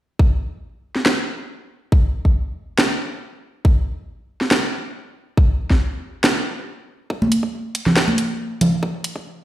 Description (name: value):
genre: dubstep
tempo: 139 BPM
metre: 4/4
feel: half-time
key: none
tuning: none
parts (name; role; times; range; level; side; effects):
- electronic kick drum; drums; 0.2-9.2 s; none; -15 LUFS; equal; overdrive, high-pass filter on kick
- garage drum kit; drums; 1.0-9.1 s; hi-hat, snare drum; -19 LUFS; equal; overdrive, high-pass filter on snare, high-pass filter on hats
- congas; percussion; 7.2-8.7 s; none; -19 LUFS; right 1 dB; dub echo
room: moderate digital room reverb, RT60 1.2 s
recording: played on a big sound system in a bare room, stone room reverb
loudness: -18 LUFS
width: side -14 dB against mid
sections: 0.2-7.1 A section; 7.1-9.4 B section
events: build-up 7.1-9.4; filter sweep 7.1-9.4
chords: none